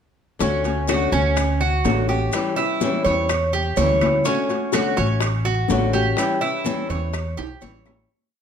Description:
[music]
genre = latin, Cuban son and guajira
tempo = 125 BPM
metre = 4/4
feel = straight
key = D major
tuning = A4 = 439 Hz
[part]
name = flamenco guitar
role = accompaniment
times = 0.4-8.1 s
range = D3 to F#4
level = -24 LUFS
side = left 5 dB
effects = none
[part]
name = Cuban tres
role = arpeggios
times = 0.4-8.1 s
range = C#4 to C#5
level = -22 LUFS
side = right 3 dB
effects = slapback echo
[part]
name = upright bass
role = bass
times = 0.4-8.0 s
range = A1 to E2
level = -23 LUFS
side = right 1 dB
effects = none
[part]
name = bongos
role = percussion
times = 0.4-8.0 s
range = none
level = -31 LUFS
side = left 8 dB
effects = none
[part]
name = congas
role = percussion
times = 0.4-8.1 s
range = none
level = -31 LUFS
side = left 3 dB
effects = none
[part]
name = maracas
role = percussion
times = 0.4-8.1 s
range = none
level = -36 LUFS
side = left 5 dB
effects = none
[part]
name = timbales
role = percussion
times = 0.7-8.0 s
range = none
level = -33 LUFS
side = right 9 dB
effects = none
[part]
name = claves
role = percussion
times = 0.9-8.1 s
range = none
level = -35 LUFS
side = left 8 dB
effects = none
[sound]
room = light reverb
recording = close, detailed microphones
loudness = -18 LUFS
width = side -7 dB against mid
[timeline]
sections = 0.4-8.1 montuno (vamp)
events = fade-out 6.2-8.1; drum fill 7.4-8.1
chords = 0.4 Dmaj7; 2.3 C#dim; 4.3 Dmaj7; 6.2 A7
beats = | 0.41 0.89 1.37 1.85 | 2.34 2.82 3.30 3.78 | 4.26 4.74 5.22 5.70 | 6.18 6.66 7.14 7.63

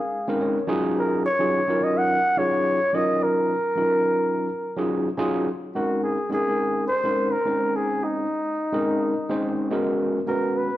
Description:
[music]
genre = jazz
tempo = 106 BPM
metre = 4/4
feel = swing 54% on 16ths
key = Bb minor from 5.5 s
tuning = A4 = 440 Hz
[part]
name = trumpet with bucket mute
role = melody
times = 0.0-10.8 s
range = Eb4 to Gb5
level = -23 LUFS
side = equal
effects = none
[part]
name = overdriven tine electric piano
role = accompaniment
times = 0.0-10.7 s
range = Gb3 to F5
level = -24 LUFS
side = equal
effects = none
[sound]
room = wet large studio reverb, RT60 1.2 s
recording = band playing live in one room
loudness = -21 LUFS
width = side -14 dB against mid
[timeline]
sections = 0.0-5.5 A section; 5.5-10.8 B section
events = tine electric piano fill 0.0-1.0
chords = 0.0 Bbm11; 0.7 Ebm11; 5.5 Bbm11; 9.7 Abm11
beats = 0.41 | 0.97 1.54 2.10 2.66 | 3.23 3.79 4.35 4.92 | 5.48 6.05 6.61 7.18 | 7.75 8.31 8.88 9.45 | 10.01 10.58

